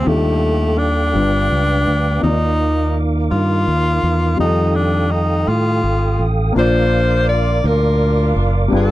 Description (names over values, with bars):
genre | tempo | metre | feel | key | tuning
gospel | 56 BPM (dotted quarters) | 6/8 | straight | Bb major | A4 = 438 Hz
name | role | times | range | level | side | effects
clear tenor saxophone | melody | 0.0-6.3 s | A3 to F4 | -19 LUFS | left 2 dB | none
warm upright piano | accompaniment | 0.0-8.9 s | G2 to D5 | -22 LUFS | left 2 dB | none
mellow tonewheel organ | sustained chords | 0.0-8.9 s | Eb4 to Eb6 | -24 LUFS | right 4 dB | chorus vibrato, stopped rotary speaker
fingered electric bass | bass | 0.0-8.9 s | Gb1 to A2 | -17 LUFS | equal | none
warm saxophone section | melody | 6.6-8.9 s | D4 to D5 | -18 LUFS | left 2 dB | none
room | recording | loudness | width
little or no reverb | dry, close 1970s-style studio recording | -14 LUFS | side -16 dB against mid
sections
0.0-6.6 A section; 6.6-8.9 B section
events
none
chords
0.1 Ebmaj9#11; 1.2 G7; 2.2 Ebmaj9; 4.4 F9; 6.6 Bb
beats
| 0.07 1.16 | 2.24 3.32 | 4.40 5.48 | 6.56 7.64 | 8.72